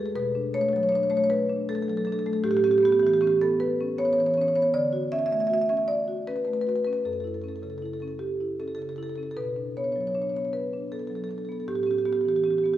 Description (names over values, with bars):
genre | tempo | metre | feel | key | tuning
classical, contemporary piece for solo marimba | 52 BPM (dotted quarters) | 6/8 | straight | B minor | A4 = 440 Hz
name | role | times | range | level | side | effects
marimba with medium mallets | solo | 0.0-12.8 s | F#2 to E5 | -23 LUFS | right 1 dB | none
room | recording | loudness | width
wet recital hall reverb, RT60 1.8 s | recorded in a church or concert hall | -23 LUFS | side -12 dB against mid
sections
0.1-12.8 A section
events
none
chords
0.1 Bm9; 2.5 A9; 4.7 Dmaj7; 7.0 F#m7; 9.4 Bm9; 11.7 A9